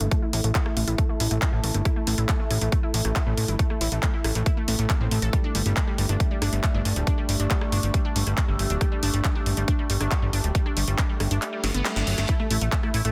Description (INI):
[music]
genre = psychedelic trance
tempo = 138 BPM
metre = 4/4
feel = straight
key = unclear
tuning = A4 = 440 Hz
[part]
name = overtone-sweeping drone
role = sustained chords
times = 0.0-13.1 s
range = A3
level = -38 LUFS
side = equal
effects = chorus, built-in reverb, phaser, sidechain pumping
[part]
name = unison pluck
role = riff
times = 0.0-13.1 s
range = F#3 to A4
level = -35 LUFS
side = equal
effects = sidechain pumping, digital delay
[part]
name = fat analog bass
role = bass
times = 0.0-13.1 s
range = D1 to A1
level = -27 LUFS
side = equal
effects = none
[part]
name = big-room dance drum kit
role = drums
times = 0.0-13.1 s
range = handclaps, hi-hat, rim click, snare drum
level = -32 LUFS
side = equal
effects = soft clipping on snare
[part]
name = warbly tape-like pad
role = texture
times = 0.0-13.1 s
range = D4 to E5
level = -38 LUFS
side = equal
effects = chorus, built-in reverb, sidechain pumping
[part]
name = electronic kick drum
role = drums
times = 0.1-12.8 s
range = none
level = -27 LUFS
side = equal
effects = none
[part]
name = reverse cymbal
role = sound effects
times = 11.6-12.3 s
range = none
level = -38 LUFS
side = equal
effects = none
[part]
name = supersaw stab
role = melody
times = 12.3-13.1 s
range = A3 to E4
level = -33 LUFS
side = equal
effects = phaser, sidechain pumping, delay
[sound]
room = light reverb, digital ambience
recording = dense, heavily limited modern master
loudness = -24 LUFS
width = mono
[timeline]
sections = 0.0-13.1 A section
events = kick drops out 11.4-12.3; reverse cymbal 11.6-12.3; drum fill 11.6-12.3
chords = 0.0 A5; 5.3 G5; 12.3 A5